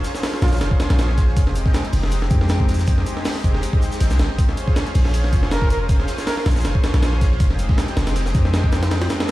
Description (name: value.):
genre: drum and bass, jungle.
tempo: 159 BPM.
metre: 4/4.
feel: swing 54% on 16ths.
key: Bb dorian.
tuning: A4 = 443 Hz.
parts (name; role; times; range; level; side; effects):
lush unison pad; sustained chords; 0.0-9.3 s; Ab3 to C5; -27 LUFS; equal; chorus.
long sustained 808-style bass; bass; 0.0-9.1 s; F1 to F2; -19 LUFS; equal; none.
breakbeat sampler-style drum kit; drums; 0.0-9.3 s; hi-hat, kick drum, snare drum; -20 LUFS; equal; small room ambience.
crunchy breakbeat drum kit; drums; 0.0-9.3 s; hi-hat, shaker, snare drum; -37 LUFS; left 2 dB; high-pass filter on hats, small room ambience, high-pass filter on snare, high-pass filter on perc, high-pass filter on room.
trumpet with bucket mute; melody; 0.4-0.6, 5.5-6.4 s; F4 to Bb4; -30 LUFS; right 1 dB; vintage 12-bit sampler grit, dub echo.
room: studio ambience.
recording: played on a big sound system in a bare room, stone room reverb, vinyl crackle.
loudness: -16 LUFS.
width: side -17 dB against mid.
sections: 0.0-9.3 A section.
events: none.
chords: 0.0 Bbm7; 1.4 Fm7; 4.4 Bbm7; 7.4 Fm7.